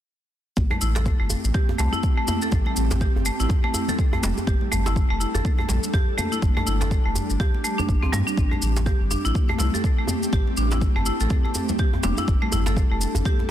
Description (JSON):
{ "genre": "afro house", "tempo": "123 BPM", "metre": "4/4", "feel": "swing 58% on 16ths", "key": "A minor", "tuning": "A4 = 441 Hz", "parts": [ { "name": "ethereal airy pad", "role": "sustained chords", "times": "1.3-13.5 s", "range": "G3 to A4", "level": "-30 LUFS", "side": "equal", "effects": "ensemble chorus, built-in reverb, sidechain pumping" }, { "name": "warm sub bass", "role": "bass", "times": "0.6-13.2 s", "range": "E1 to G2", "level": "-24 LUFS", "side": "equal", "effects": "sidechain pumping" }, { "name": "electronic kick drum", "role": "drums", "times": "0.6-13.4 s", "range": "none", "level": "-22 LUFS", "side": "equal", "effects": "none" }, { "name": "shaker", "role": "drums", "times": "0.6-13.4 s", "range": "none", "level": "-32 LUFS", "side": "left 2 dB", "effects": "none" }, { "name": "congas", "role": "percussion", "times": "0.6-13.5 s", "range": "none", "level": "-33 LUFS", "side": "left 1 dB", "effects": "none" }, { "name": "buzzing marimba with hard mallets", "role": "arpeggios", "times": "0.7-13.3 s", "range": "G3 to A4", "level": "-28 LUFS", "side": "left 1 dB", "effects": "vintage 12-bit sampler grit, sidechain pumping, ping-pong delay" }, { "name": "djembe", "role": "percussion", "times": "0.7-13.5 s", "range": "none", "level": "-30 LUFS", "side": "right 2 dB", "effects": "none" } ], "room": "small room ambience", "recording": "dense, heavily limited modern master", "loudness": "-20 LUFS", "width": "side -11 dB against mid", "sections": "0.6-13.5 A section", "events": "none", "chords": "0.6 Am7; 4.5 G5; 8.4 Am7; 12.3 G5" }